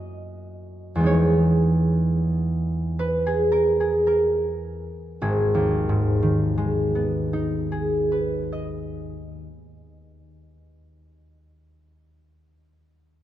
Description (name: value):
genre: classical, solo harp piece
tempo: 50-68 BPM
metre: 4/4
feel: rubato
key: G# minor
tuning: A4 = 440 Hz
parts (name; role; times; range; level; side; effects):
- concert harp; solo; 0.0-11.1 s; G#1 to G#5; -21 LUFS; right 1 dB; none
room: wet concert hall reverb, RT60 2.0 s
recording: minimal, uncompressed stereo recording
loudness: -20 LUFS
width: side -12 dB against mid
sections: 0.0-5.2 A section; 5.2-9.6 B section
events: slowing down 0.0-5.2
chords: 0.0 F#9; 1.0 Emaj7; 5.2 G#m